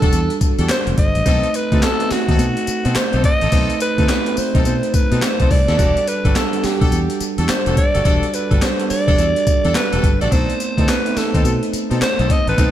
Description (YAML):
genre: R&B, new jack swing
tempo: 106 BPM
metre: 4/4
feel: swing 62% on 16ths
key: E minor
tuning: A4 = 440 Hz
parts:
  - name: growling alto saxophone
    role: melody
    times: 0.0-12.7 s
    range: F#4 to D#5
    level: -21 LUFS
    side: equal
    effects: slapback echo
  - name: bell-like tine electric piano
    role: accompaniment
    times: 0.0-12.7 s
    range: G3 to F#5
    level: -23 LUFS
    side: right 5 dB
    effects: wide subtle chorus, slapback echo
  - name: clear horn section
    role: stabs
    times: 0.0-12.7 s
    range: C4 to A4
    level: -27 LUFS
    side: left 3 dB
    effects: tube saturation, slapback echo
  - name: fingered electric bass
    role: bass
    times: 0.0-12.7 s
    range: E1 to B2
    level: -20 LUFS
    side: equal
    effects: none
  - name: breakbeat sampler-style drum kit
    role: drums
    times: 0.0-12.7 s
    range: handclaps, hi-hat, kick drum, snare drum, tambourine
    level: -18 LUFS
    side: equal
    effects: none
room: light reverb, digital ambience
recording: none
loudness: -14 LUFS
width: side -12 dB against mid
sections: 0.0-12.7 A section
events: none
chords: 0.0 Em11; 1.3 B7b9; 5.8 Em11; 10.3 B7b9